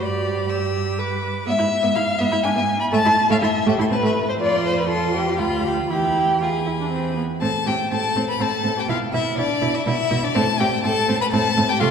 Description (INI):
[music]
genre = quick classical-period movement for string quartet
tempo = 122 BPM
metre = 3/4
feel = straight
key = A minor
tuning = A4 = 436 Hz
[part]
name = rich violin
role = melody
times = 0.0-11.9 s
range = D5 to E6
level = -26 LUFS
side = left 6 dB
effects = none
[part]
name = rich violin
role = second line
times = 0.0-11.9 s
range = D4 to B5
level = -22 LUFS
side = left 1 dB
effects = none
[part]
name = rich viola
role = accompaniment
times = 0.0-11.9 s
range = A3 to B4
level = -25 LUFS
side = right 2 dB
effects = none
[part]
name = rich cello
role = bass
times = 0.0-11.9 s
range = D2 to C3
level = -24 LUFS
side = right 2 dB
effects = none
[sound]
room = wet church reverb, RT60 3.2 s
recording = recorded in a church or concert hall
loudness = -18 LUFS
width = side -7 dB against mid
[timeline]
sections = 0.0-7.4 A section; 7.4-11.9 B section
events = none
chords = 0.0 G; 1.5 E/G#; 2.9 A5; 4.4 F5; 5.4 Bdim/D; 5.9 E; 7.4 Am; 8.9 E5/B; 10.4 Am